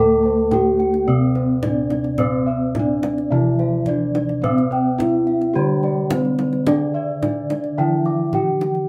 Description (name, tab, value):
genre	Javanese gamelan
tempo	107 BPM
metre	4/4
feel	straight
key	D slendro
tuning	A4 = 440 Hz
part	gamelan-type bronze metallophone	melody	0.0-8.9 s	C4-45c to A4+25c	-23 LUFS	equal	none
part	gamelan-type bronze metallophone	accompaniment	0.0-8.9 s	D3 to C4-45c	-27 LUFS	equal	none
part	gamelan-type bossed gongs	arpeggios	0.0-8.7 s	C5-45c to D6	-30 LUFS	equal	none
part	gamelan-type bronze metallophone	arpeggios	0.0-8.9 s	C5-45c to A5+25c	-33 LUFS	equal	none
part	gamelan-type bossed gongs	bass	0.0-8.9 s	D2 to C5-45c	-25 LUFS	equal	none
part	kendang	percussion	0.5-8.8 s	none	-30 LUFS	equal	none
room	moderate studio reverb, RT60 0.5 s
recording	band playing live in one room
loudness	-19 LUFS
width	mono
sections	0.0-8.9 A section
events	none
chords	none